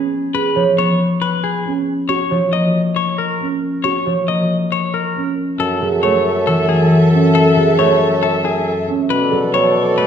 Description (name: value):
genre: classical, minimalist pattern music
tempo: 137 BPM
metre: 4/4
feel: straight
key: F# minor from 5.6 s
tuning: A4 = 437 Hz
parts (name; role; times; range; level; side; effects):
- concert harp; accompaniment; 0.0-10.1 s; E3 to Cb4; -19 LUFS; left 2 dB; none
- dark grand piano; arpeggios; 0.0-9.8 s; Db4 to Db5; -19 LUFS; right 4 dB; none
- semi-hollow electric guitar; melody; 0.3-10.1 s; Ab4 to Eb5; -20 LUFS; left 6 dB; none
- warm soprano saxophone; second line; 5.6-10.1 s; A4; -21 LUFS; right 4 dB; none
- dark chamber string section; sustained chords; 5.6-10.1 s; A4 to E5; -21 LUFS; left 4 dB; none
- dark bassoon; bass; 5.6-10.1 s; F#2 to B2; -20 LUFS; equal; none
room: wet recital hall reverb, RT60 1.7 s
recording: dark, warm production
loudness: -13 LUFS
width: side -8 dB against mid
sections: 0.0-5.6 A section; 5.6-10.1 B section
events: none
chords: 0.0 Db7; 2.1 Gbmaj7; 5.6 F#m7; 9.1 Bm7